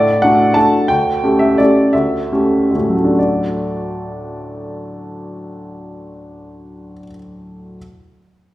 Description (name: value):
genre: classical, piano waltz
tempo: 124-187 BPM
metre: 3/4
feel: rubato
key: D major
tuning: A4 = 439 Hz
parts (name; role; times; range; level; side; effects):
- clear upright piano; solo; 0.0-7.8 s; D2 to A5; -15 LUFS; equal; none
room: wet recital hall reverb, RT60 1.3 s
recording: heard from further back in the room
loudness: -12 LUFS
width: side -16 dB against mid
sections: 0.0-3.2 A section; 3.2-5.7 B section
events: slowing down 0.4-3.2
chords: 0.0 D; 0.9 A7/D; 3.2 D